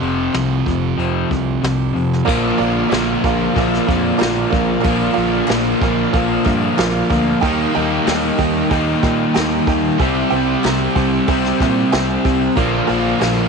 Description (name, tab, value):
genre	classic rock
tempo	93 BPM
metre	4/4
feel	straight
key	unclear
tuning	A4 = 440 Hz
part	distorted electric guitar	riff	0.0-13.5 s	F2 to E4	-20 LUFS	left 11 dB	distortion
part	overdriven electric guitar	riff	0.0-13.5 s	F2 to Eb4	-21 LUFS	right 12 dB	none
part	growling fingered electric bass	bass	0.0-13.4 s	F1 to Bb2	-24 LUFS	equal	overdrive
part	vintage brush drum kit	drums	0.0-13.4 s	crash cymbal, hi-hat, kick drum, snare drum	-23 LUFS	equal	none
part	tack piano	accompaniment	2.2-13.5 s	F4 to Bb5	-23 LUFS	right 11 dB	none
part	overdriven tonewheel organ	sustained chords	2.3-13.5 s	Bb3 to F5	-30 LUFS	equal	none
part	crunchy overdriven guitar	riff	2.3-13.5 s	Bb2 to Eb4	-21 LUFS	equal	none
part	group handclap	percussion	2.9-13.4 s	none	-33 LUFS	left 13 dB	none
room	light reverb, small room ambience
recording	1960s-style stereo with parts hard left and right, nothing above 10.5 kHz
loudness	-14 LUFS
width	side -4 dB against mid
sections	0.0-2.3 A section; 2.3-13.5 B section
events	none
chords	0.0 F5; 2.3 Bb; 7.4 Eb; 10.0 C; 12.6 Bb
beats	0.35 0.99 1.64 | 2.28 2.93 3.57 4.21 | 4.85 5.50 6.14 6.78 | 7.42 8.06 8.71 9.35 | 9.99 10.64 11.28 11.92 | 12.57 13.21